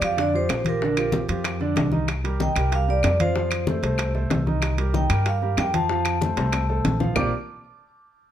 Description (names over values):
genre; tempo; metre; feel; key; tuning
Afro-Cuban jazz; 189 BPM; 4/4; straight; Bb major; A4 = 440 Hz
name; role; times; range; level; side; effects
vibraphone with medium mallets; melody; 0.0-7.3 s; Bb4 to D6; -26 LUFS; equal; tape echo
warm concert grand piano; accompaniment; 0.0-7.3 s; D3 to F5; -28 LUFS; right 4 dB; none
upright bass; bass; 0.0-7.3 s; Bb1 to G2; -25 LUFS; equal; none
claves; percussion; 0.0-7.2 s; none; -32 LUFS; left 4 dB; none
congas; percussion; 0.0-7.2 s; none; -29 LUFS; left 3 dB; none
timbales; percussion; 0.0-7.2 s; none; -31 LUFS; right 5 dB; none
bongos; percussion; 0.2-7.2 s; none; -32 LUFS; left 5 dB; none
room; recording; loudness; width
light reverb; close, detailed microphones; -20 LUFS; side -10 dB against mid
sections
0.0-2.1 A section; 2.1-7.2 B section; 7.2-8.3 C section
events
drum fill 6.4-7.2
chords
0.0 Bb69; 2.1 Cm9; 3.4 F7; 4.6 Cm7; 5.9 F; 7.2 Bb69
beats
0.18 0.50 | 0.81 1.13 1.45 1.77 | 2.09 2.40 2.72 3.04 | 3.36 3.67 3.99 4.31 | 4.63 4.95 5.26 5.58 | 5.90 6.21 6.53 6.85 | 7.16